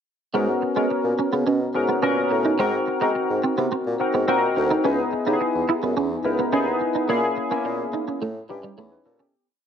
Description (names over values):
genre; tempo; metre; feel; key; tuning
pop; 107 BPM; 4/4; straight; G# minor; A4 = 443 Hz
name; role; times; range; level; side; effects
barky tine electric piano; accompaniment; 0.3-9.5 s; A#3 to C#5; -22 LUFS; left 2 dB; overdrive, analog chorus
clean electric guitar; riff; 0.3-9.3 s; G3 to E4; -26 LUFS; right 5 dB; ensemble chorus
warm bassoon; bass; 0.3-9.2 s; C#2 to A#3; -26 LUFS; equal; none
room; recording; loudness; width
light reverb, studio reverb; none; -20 LUFS; side -8 dB against mid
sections
0.3-9.3 verse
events
fade-out 7.1-9.3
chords
0.3 G#m11; 2.6 G#7; 4.8 C#m7; 7.1 A#m7b5; 8.2 A7#11